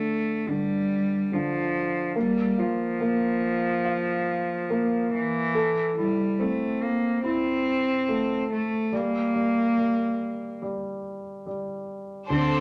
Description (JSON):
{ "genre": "pop", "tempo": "71 BPM", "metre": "4/4", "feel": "straight", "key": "unclear", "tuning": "A4 = 440 Hz", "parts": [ { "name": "rich cello", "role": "melody", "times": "0.0-12.6 s", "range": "E3 to C4", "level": "-28 LUFS", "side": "equal", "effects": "none" }, { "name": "dark concert grand piano", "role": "accompaniment", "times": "0.0-12.6 s", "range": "D3 to F5", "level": "-30 LUFS", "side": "equal", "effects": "none" }, { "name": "clear studio string section", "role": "sustained chords", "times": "12.3-12.6 s", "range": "D3 to C5", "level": "-27 LUFS", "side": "equal", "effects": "none" }, { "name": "vintage muted fingered electric bass", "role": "bass", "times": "12.3-12.6 s", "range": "D2", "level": "-30 LUFS", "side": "equal", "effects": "none" } ], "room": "wet club reverb, RT60 0.8 s", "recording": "none", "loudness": "-26 LUFS", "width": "mono", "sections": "0.0-12.6 A section", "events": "none", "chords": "0.0 N.C.; 2.2 Bb5; 5.5 Am/E; 8.9 N.C." }